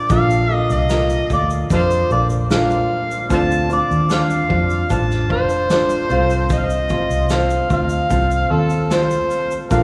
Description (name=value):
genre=acoustic pop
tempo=75 BPM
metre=4/4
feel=straight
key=unclear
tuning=A4 = 440 Hz
part: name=overdriven harmonica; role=melody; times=0.0-9.8 s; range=F4 to A5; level=-22 LUFS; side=equal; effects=none
part: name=clear upright piano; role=accompaniment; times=0.0-9.8 s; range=Bb3 to A5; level=-32 LUFS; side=equal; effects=none
part: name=ukulele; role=accompaniment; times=0.0-9.8 s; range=C4 to C5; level=-24 LUFS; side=equal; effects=none
part: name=vintage muted fingered electric bass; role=bass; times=0.1-9.8 s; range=F1 to F2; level=-22 LUFS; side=equal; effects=none
part: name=vintage brush drum kit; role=drums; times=0.1-9.8 s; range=kick drum, shaker, snare drum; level=-27 LUFS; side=equal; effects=none
room=wet cathedral reverb, RT60 5.8 s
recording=recorded in a church or concert hall, studio reverb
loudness=-18 LUFS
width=mono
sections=0.0-9.8 A section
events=none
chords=0.0 Bbmaj7; 3.3 Dm7; 6.1 F/C